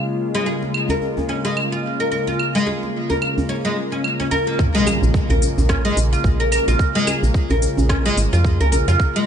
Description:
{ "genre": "organic downtempo", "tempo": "109 BPM", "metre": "4/4", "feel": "swing 58% on 16ths", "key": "Bb minor", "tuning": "A4 = 436 Hz", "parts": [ { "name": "warm analog pad", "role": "sustained chords", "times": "0.0-9.3 s", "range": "Db3 to Ab4", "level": "-25 LUFS", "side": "left 1 dB", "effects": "lush chorus, sidechain pumping" }, { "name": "oud", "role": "arpeggios", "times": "0.3-9.3 s", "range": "Ab3 to Bb4", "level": "-21 LUFS", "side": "equal", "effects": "tape echo" }, { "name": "djembe", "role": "percussion", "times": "0.6-9.0 s", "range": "none", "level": "-27 LUFS", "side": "right 2 dB", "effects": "none" }, { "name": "organic electronic drum kit", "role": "drums", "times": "0.7-9.1 s", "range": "cabasa, claves, hi-hat, rim click", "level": "-26 LUFS", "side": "right 1 dB", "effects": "overdrive" }, { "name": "electronic kick drum", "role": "drums", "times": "4.6-9.1 s", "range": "none", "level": "-20 LUFS", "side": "equal", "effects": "overdrive" }, { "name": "impact", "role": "sound effects", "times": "4.6-6.8 s", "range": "none", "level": "-27 LUFS", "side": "equal", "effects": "none" }, { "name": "woody FM bass", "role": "bass", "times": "5.0-9.0 s", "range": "Ab1 to F2", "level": "-18 LUFS", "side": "equal", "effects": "none" } ], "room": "light reverb", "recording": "nothing above 10.3 kHz", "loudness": "-16 LUFS", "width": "side -8 dB against mid", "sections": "0.0-4.6 A section; 4.6-9.3 B section", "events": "impact 4.6-6.8", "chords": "0.0 Bbm7" }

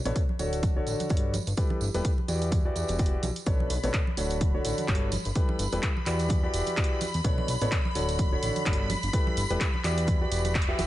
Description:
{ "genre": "piano house", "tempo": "127 BPM", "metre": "4/4", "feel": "swing 57% on 16ths", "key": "unclear", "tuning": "A4 = 444 Hz", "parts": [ { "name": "warm concert grand piano", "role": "riff", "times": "0.1-10.9 s", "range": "B2 to E5", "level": "-31 LUFS", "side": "equal", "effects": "sidechain pumping, ping-pong delay" }, { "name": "fat analog bass", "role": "bass", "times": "0.1-10.9 s", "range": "D1 to E2", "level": "-30 LUFS", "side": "equal", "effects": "sidechain pumping" }, { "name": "punchy analog drum machine", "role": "drums", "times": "0.1-10.9 s", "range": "handclaps, hi-hat", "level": "-35 LUFS", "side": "equal", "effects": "none" }, { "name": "tambourine and congas", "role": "percussion", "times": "0.1-10.9 s", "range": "none", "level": "-37 LUFS", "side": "right 4 dB", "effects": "none" }, { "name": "electronic kick drum", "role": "drums", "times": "0.2-10.7 s", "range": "none", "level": "-27 LUFS", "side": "equal", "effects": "none" }, { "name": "string machine, violins", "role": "sustained chords", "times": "3.5-10.9 s", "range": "B5", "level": "-36 LUFS", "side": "left 1 dB", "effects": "ensemble chorus, sidechain pumping" } ], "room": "digital ambience", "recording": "nothing above 10.7 kHz", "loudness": "-25 LUFS", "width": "side -14 dB against mid", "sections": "0.0-10.9 A section", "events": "band accent 10.6", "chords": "0.0 Bm9; 0.6 Dmaj7; 1.3 G69; 2.3 Em9; 3.5 Bm9; 4.4 Dmaj7; 5.1 G69; 6.1 Em9; 7.2 Bm9; 8.2 Dmaj7; 8.9 G69; 9.8 Em9" }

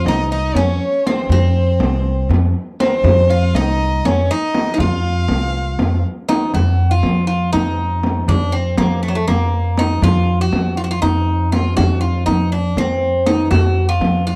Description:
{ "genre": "Turkish makam ensemble", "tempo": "241 BPM (eighths)", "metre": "7/8", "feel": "straight", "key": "F makam hicaz from 6.5 s", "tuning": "A4 = 445 Hz", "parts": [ { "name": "Greek bouzouki", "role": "melody", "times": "0.0-14.4 s", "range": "Gb3 to Gb4", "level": "-22 LUFS", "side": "equal", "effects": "none" }, { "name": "rich violin", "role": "second line", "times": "0.0-6.0 s", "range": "Bb4 to F5", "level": "-27 LUFS", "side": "equal", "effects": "none" }, { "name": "upright bass", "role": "bass", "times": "0.1-14.4 s", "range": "C2 to F3", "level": "-19 LUFS", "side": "equal", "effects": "none" }, { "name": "frame drum", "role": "percussion", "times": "0.1-14.1 s", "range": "none", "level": "-24 LUFS", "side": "equal", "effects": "none" }, { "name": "clear double bass", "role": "drone", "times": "6.5-14.4 s", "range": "F2", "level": "-26 LUFS", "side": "equal", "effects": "none" } ], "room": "little or no reverb", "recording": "dry, close 1970s-style studio recording", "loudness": "-17 LUFS", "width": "mono", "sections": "0.0-6.5 A section; 6.5-14.4 B section", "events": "none", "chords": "none" }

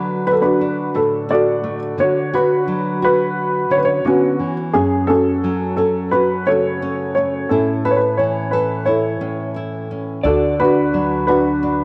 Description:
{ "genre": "acoustic folk-pop ballad", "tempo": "87 BPM", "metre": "4/4", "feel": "straight", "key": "unclear", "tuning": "A4 = 440 Hz", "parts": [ { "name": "dark upright piano", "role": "melody", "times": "0.0-11.8 s", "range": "B3 to D5", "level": "-19 LUFS", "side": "equal", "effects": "none" }, { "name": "nylon-string guitar", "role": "accompaniment", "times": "0.0-11.8 s", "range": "F#2 to A4", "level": "-25 LUFS", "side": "equal", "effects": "none" }, { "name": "electric guitar through a small old amp", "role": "arpeggios", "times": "10.2-11.8 s", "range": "D5", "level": "-28 LUFS", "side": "equal", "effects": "tremolo" }, { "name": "upright bass", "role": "bass", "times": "10.2-11.8 s", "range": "D2", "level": "-31 LUFS", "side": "equal", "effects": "none" } ], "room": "moderate plate reverb, RT60 3.3 s", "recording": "none", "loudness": "-18 LUFS", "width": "mono", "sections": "0.0-11.8 A section", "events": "none", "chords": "0.0 D; 2.0 Bmadd9/D; 4.7 F#m; 7.5 A; 10.2 D" }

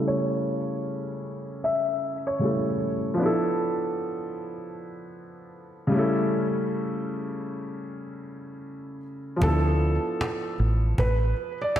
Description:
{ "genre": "lo-fi hip hop", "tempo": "77 BPM", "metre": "4/4", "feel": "swing 61% on 16ths", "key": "D dorian", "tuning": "A4 = 440 Hz", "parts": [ { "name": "dark upright piano", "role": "accompaniment", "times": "0.0-11.8 s", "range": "C#3 to A4", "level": "-27 LUFS", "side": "equal", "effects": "cassette tape, low-pass filter" }, { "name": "felt-muted upright piano", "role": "melody", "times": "0.1-3.2, 9.4-11.8 s", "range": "A4 to E5", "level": "-29 LUFS", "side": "equal", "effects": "low-pass filter, tape echo" }, { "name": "deep dub fingered electric bass", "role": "bass", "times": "9.4-11.3 s", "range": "A1 to D2", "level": "-22 LUFS", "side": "equal", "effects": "none" }, { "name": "cajon", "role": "drums", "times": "9.4-11.8 s", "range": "none", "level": "-30 LUFS", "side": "equal", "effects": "none" } ], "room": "moderate lush hall reverb, RT60 1.8 s, small room reverb", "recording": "dreamy mix soaked in reverb, cassette tape", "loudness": "-24 LUFS", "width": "side -11 dB against mid", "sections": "0.0-9.4 A section; 9.4-11.8 B section", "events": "filter sweep 0.0-9.4", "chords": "0.0 A7/C#; 3.2 Dm69; 5.9 A7/C#; 9.4 Dm69" }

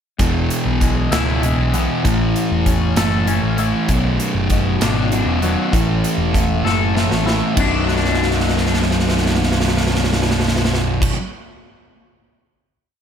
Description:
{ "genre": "quiet-loud alternative rock", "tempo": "65 BPM (dotted quarters)", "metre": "6/8", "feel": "straight", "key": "B dorian", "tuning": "A4 = 440 Hz", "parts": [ { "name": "twangy electric guitar", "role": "arpeggios", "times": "0.2-11.1 s", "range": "B1 to A4", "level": "-24 LUFS", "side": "left 9 dB", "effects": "phaser, digital delay" }, { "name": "thick fuzz guitar", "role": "riff", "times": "0.2-11.1 s", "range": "B1 to A3", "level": "-19 LUFS", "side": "right 1 dB", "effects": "distortion" }, { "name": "overdriven picked electric bass", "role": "bass", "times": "0.2-11.1 s", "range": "B0 to B1", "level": "-21 LUFS", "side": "equal", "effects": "none" }, { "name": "big rock drum kit", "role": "drums", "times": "0.2-11.2 s", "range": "crash cymbal, hi-hat, kick drum, snare drum", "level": "-21 LUFS", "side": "equal", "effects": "none" } ], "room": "little or no reverb", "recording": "none", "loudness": "-15 LUFS", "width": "side -8 dB against mid", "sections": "0.2-7.6 pre-chorus; 7.6-11.2 final chord", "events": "drum fill 6.7-7.6, 7.9-11.0", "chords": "0.2 E; 2.0 A; 3.9 Bm; 5.7 A5; 7.6 Bm" }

